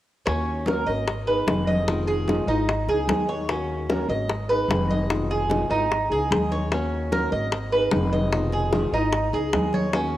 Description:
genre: latin, Cuban son and guajira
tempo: 149 BPM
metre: 4/4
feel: straight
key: unclear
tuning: A4 = 440 Hz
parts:
  - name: nylon-string guitar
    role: accompaniment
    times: 0.3-10.2 s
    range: Cb3 to Ab4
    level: -28 LUFS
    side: left 2 dB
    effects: cassette tape
  - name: Cuban tres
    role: arpeggios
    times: 0.3-10.2 s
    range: Db4 to Eb5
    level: -25 LUFS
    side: right 2 dB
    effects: cassette tape
  - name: upright bass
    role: bass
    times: 0.3-10.2 s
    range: F1 to Eb2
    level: -28 LUFS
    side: equal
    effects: none
  - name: bongos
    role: percussion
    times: 0.3-10.1 s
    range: none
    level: -28 LUFS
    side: left 3 dB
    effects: none
  - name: congas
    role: percussion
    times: 0.3-10.2 s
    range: none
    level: -30 LUFS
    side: equal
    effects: none
room: moderate lush hall reverb, RT60 2.9 s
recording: home recording on cassette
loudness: -21 LUFS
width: side -14 dB against mid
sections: 0.3-10.2 A section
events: none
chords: 0.3 Ebm7; 1.1 Fm7b5; 2.7 Abm; 3.5 Ebm7; 4.3 Fm7b5; 5.9 Abm; 6.7 Ebm7; 7.5 Fm7b5; 9.1 Abm

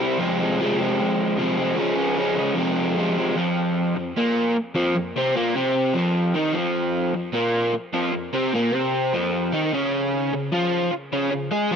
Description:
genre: rock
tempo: 151 BPM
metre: 4/4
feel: straight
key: F minor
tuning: A4 = 440 Hz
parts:
  - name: crunchy overdriven guitar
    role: solo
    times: 0.0-11.8 s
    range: F2 to Ab4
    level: -20 LUFS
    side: equal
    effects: tape echo
room: light reverb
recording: none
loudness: -20 LUFS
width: side -7 dB against mid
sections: 0.0-3.4 A section; 3.4-11.8 B section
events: none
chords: 0.2 Fm; 1.8 Db; 2.6 Fm; 3.4 F5; 9.7 Db5

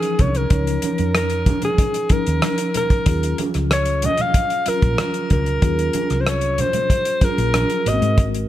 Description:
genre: lush 1970s-style soul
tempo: 94 BPM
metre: 4/4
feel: straight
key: unclear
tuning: A4 = 444 Hz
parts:
  - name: breathy alto saxophone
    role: melody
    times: 0.0-8.2 s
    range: Ab4 to F5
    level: -22 LUFS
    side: equal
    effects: none
  - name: mellow tine electric piano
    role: accompaniment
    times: 0.0-8.5 s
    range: Fb3 to Db5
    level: -25 LUFS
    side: left 2 dB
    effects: medium stereo tremolo
  - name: warm soul drum kit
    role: drums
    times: 0.0-8.5 s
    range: hi-hat, kick drum, rim click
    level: -20 LUFS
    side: equal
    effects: none
  - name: hollow-body short-scale fingered electric bass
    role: bass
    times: 0.2-8.4 s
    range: Ab1 to Ab2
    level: -21 LUFS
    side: equal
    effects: none
  - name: congas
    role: percussion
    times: 0.2-8.3 s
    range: none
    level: -28 LUFS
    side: right 5 dB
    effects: none
room: studio reverb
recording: none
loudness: -16 LUFS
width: side -13 dB against mid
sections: 0.0-8.5 A section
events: none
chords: 0.0 Db69; 3.1 Ebm11 (rootless); 7.9 Ab9

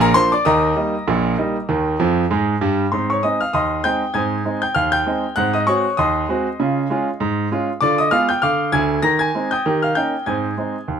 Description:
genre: ragtime piano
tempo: 98 BPM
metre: 2/4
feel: swing 56% on 16ths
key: Ab major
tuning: A4 = 439 Hz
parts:
  - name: bright grand piano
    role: solo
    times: 0.0-11.0 s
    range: Bb1 to Bb6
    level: -16 LUFS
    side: right 1 dB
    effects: none
room: light reverb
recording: close, detailed microphones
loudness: -16 LUFS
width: side -7 dB against mid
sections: 0.0-2.9 A section; 2.9-11.0 B section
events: grand piano fill 2.0-2.9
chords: 0.5 Eb; 2.9 Ab; 5.4 Ab7; 6.6 Db; 7.8 Ddim7; 9.0 Ab/Eb; 9.6 Eb7; 10.3 Ab

